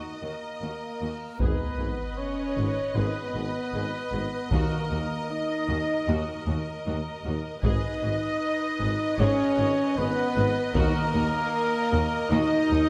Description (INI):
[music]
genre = cinematic, epic orchestral film score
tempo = 77 BPM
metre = 4/4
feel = straight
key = unclear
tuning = A4 = 441 Hz
[part]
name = rich studio violin section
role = melody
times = 0.0-12.9 s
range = Eb5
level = -39 LUFS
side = equal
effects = none
[part]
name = warm symphonic violin section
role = second line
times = 0.0-12.9 s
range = Bb4 to Eb5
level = -40 LUFS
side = equal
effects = none
[part]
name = clear symphonic viola section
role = accompaniment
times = 0.0-12.9 s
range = Gb4 to Cb5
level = -41 LUFS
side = equal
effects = none
[part]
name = warm French horn section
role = sustained chords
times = 0.0-12.9 s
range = Bb3 to Eb4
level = -32 LUFS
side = equal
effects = none
[part]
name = reverse cymbal and sub drop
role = sound effects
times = 1.4-4.5 s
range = none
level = -39 LUFS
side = equal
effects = none
[part]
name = silver concert flute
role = second line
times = 0.2-12.9 s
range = Bb4 to Eb5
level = -38 LUFS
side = equal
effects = none
[part]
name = warm trumpet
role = stabs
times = 0.2-12.9 s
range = Bb4 to Eb5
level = -36 LUFS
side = equal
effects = none
[part]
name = rich symphonic cello section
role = bass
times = 0.2-12.8 s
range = Eb2 to Ab2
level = -35 LUFS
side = equal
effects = none
[part]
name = rich symphonic double bass section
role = bass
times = 1.4-12.8 s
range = Ab1 to Eb2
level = -35 LUFS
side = equal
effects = none
[part]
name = warm tuba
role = bass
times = 1.4-12.9 s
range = Ab1 to Eb2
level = -37 LUFS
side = equal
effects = none
[part]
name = solo taiko drums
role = drums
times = 1.4-11.5 s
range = none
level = -32 LUFS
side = equal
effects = none
[part]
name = timpani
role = percussion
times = 4.5-5.6, 10.8-11.9 s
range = Eb3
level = -35 LUFS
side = equal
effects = none
[sound]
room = moderate scoring stage reverb, RT60 1.9 s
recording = none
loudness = -27 LUFS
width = mono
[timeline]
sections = 0.0-1.4 A section; 1.4-12.9 A section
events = reverse cymbal 1.4; impact 1.4-4.5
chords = 0.0 Ebm; 1.4 Abm; 4.5 Ebm; 7.6 Abm; 10.8 Ebm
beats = 0.62 | 1.40 2.18 2.96 3.74 | 4.52 5.30 6.08 6.86 | 7.64 8.42 9.20 9.97 | 10.75 11.53 12.31